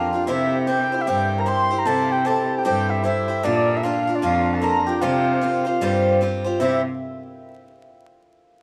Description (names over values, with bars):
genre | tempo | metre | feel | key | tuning
celtic folk, Celtic hornpipe | 152 BPM | 4/4 | swing 62% on 8ths | C mixolydian | A4 = 440 Hz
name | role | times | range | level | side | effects
reedy wooden flute | melody | 0.0-6.8 s | D5 to C6 | -26 LUFS | equal | analog delay
accordion | second line | 0.0-6.8 s | D5 to C6 | -36 LUFS | equal | none
hammered dulcimer | second line | 0.0-8.0 s | D4 to C5 | -29 LUFS | equal | none
picked swing-style acoustic guitar | accompaniment | 0.0-6.8 s | C3 to C5 | -26 LUFS | equal | none
rich cello | bass | 0.0-6.8 s | F2 to C3 | -28 LUFS | equal | none
room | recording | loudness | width
light reverb, small room ambience | rough home demo mix, vinyl crackle | -21 LUFS | mono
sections
0.0-6.6 A section; 6.6-8.2 B section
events
none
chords
0.3 C; 3.4 Bb; 5.0 Csus4; 6.6 C